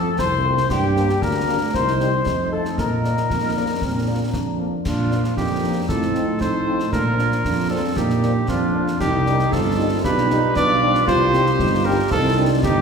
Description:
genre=military-style march for wind band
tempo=116 BPM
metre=2/4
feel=straight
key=Bb major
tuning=A4 = 440 Hz
part: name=mellow cornet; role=melody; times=0.0-12.8 s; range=F4 to D5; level=-23 LUFS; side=equal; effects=none
part: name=dark woodwind section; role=second line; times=0.0-12.8 s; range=D4 to C5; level=-27 LUFS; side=left 1 dB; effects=none
part: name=mellow hollow wooden piccolo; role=second line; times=0.0-4.6 s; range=G5 to C6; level=-25 LUFS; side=left 8 dB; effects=none
part: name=mellow French horn section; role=accompaniment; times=0.0-12.5 s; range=Eb3 to F4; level=-30 LUFS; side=left 4 dB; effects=none
part: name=mellow trombone section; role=sustained chords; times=0.0-12.8 s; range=F3 to F4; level=-29 LUFS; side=right 1 dB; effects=none
part: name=mellow tuba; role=bass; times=0.0-12.8 s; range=G1 to Bb2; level=-22 LUFS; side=right 1 dB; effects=none
part: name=concert snare drum, concert bass drum and clash cymbals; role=drums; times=0.2-12.8 s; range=none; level=-28 LUFS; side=equal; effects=none
part: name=warm euphonium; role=second line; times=3.3-12.7 s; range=Bb3 to F4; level=-26 LUFS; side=right 3 dB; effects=none
room=wet scoring stage reverb, RT60 1.4 s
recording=heard from further back in the room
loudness=-17 LUFS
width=side -6 dB against mid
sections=0.0-4.9 A section; 4.9-12.8 A section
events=none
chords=0.0 F; 0.7 Gm; 1.7 Cm; 2.3 F7; 2.8 Bb; 5.9 F7/A; 6.9 Bb; 9.0 Cm; 10.0 G7/B; 11.1 Cm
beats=0.19 | 0.71 1.23 | 1.75 2.26 | 2.78 3.30 | 3.82 4.34 | 4.86 5.38 | 5.89 6.41 | 6.93 7.45 | 7.97 8.49 | 9.00 9.52 | 10.04 10.56 | 11.08 11.60 | 12.12 12.63

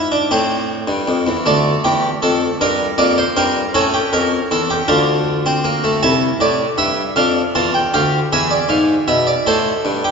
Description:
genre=classical, baroque-style 4-part fugue for harpsichord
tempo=52 BPM (dotted quarters)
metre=6/8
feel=straight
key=D minor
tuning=A4 = 440 Hz
part: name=harpsichord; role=solo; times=0.0-10.1 s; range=C2 to A5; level=-14 LUFS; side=equal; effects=none
room=wet church reverb, RT60 2.8 s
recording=recorded in a church or concert hall, nothing above 7.6 kHz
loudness=-14 LUFS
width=side -5 dB against mid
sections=0.0-10.1 A section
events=none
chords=0.3 Am; 1.5 Dm; 2.6 Gm; 3.7 A7; 4.9 Dm; 6.0 Am/C; 7.2 Dm; 8.3 E7; 9.5 Am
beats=0.32 | 1.46 2.60 | 3.74 4.88 | 6.02 7.17 | 8.32 9.47

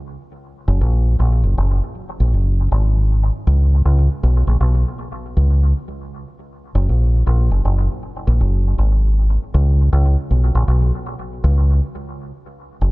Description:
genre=reggae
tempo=79 BPM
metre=4/4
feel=swing 63% on 16ths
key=unclear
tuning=A4 = 440 Hz
part: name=deep dub fingered electric bass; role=solo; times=0.7-12.9 s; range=F#1 to C#2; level=-15 LUFS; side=equal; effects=dub echo
room=light reverb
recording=none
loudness=-15 LUFS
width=side -22 dB against mid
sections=0.0-12.9 A section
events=none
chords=none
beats=| 0.42 1.18 1.94 2.70 | 3.46 4.22 4.98 5.74 | 6.50 7.25 8.01 8.77 | 9.53 10.29 11.05 11.81 | 12.56

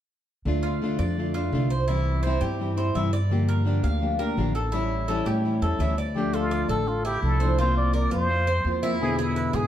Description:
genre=latin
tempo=168 BPM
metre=4/4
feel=straight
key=D minor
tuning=A4 = 439 Hz
part: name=nylon-string guitar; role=accompaniment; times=0.5-9.7 s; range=B2 to G4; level=-28 LUFS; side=left 2 dB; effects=none
part: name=upright bass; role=bass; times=0.5-9.7 s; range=A1 to A2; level=-25 LUFS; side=right 1 dB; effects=none
part: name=Cuban tres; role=arpeggios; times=0.6-9.7 s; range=E4 to F5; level=-30 LUFS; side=right 1 dB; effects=none
part: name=trumpet with plunger mute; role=melody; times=6.2-9.7 s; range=E4 to D5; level=-28 LUFS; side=equal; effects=none
room=moderate large studio reverb, RT60 1.3 s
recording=dark, warm production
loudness=-22 LUFS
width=side -11 dB against mid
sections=0.4-6.2 A section; 6.2-9.7 B section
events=none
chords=0.4 Dm; 1.9 C; 3.3 Gm7; 4.7 A7; 6.2 Dmadd9; 7.6 C7sus4; 9.0 E7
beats=| 0.45 0.80 1.16 1.52 | 1.87 2.23 2.59 2.94 | 3.30 3.66 4.01 4.37 | 4.73 5.08 5.44 5.80 | 6.15 6.51 6.86 7.22 | 7.58 7.93 8.29 8.64 | 9.00 9.36

